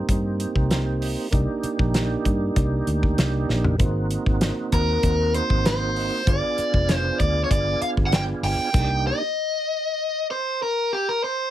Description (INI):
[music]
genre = straight-eighth soul blues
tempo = 97 BPM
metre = 4/4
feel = straight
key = C minor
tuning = A4 = 441 Hz
[part]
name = percussive tonewheel organ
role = accompaniment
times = 0.0-9.2 s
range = Bb3 to Ab4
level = -27 LUFS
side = right 3 dB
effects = slow rotary speaker, overdrive, chorus vibrato
[part]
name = vintage muted fingered electric bass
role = bass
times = 0.1-9.1 s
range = F1 to G2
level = -24 LUFS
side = equal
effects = none
[part]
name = warm soul drum kit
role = drums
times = 0.1-8.9 s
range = crash cymbal, hi-hat, kick drum, snare drum, toms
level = -23 LUFS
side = equal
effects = none
[part]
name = overdriven electric guitar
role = melody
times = 4.7-11.5 s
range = G4 to G5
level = -23 LUFS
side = left 1 dB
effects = none
[sound]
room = light reverb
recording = none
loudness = -20 LUFS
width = side -12 dB against mid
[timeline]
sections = 0.0-11.5 A section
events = drum fill 3.5-3.8; stop 8.7-11.5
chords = 0.0 Cm7; 3.8 Ab7; 6.3 G7b9; 8.7 Cm7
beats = 0.09 0.70 | 1.32 1.94 2.56 3.18 | 3.80 4.41 5.03 5.65 | 6.27 6.89 7.50 8.12 | 8.74 9.36 9.98 10.59 | 11.21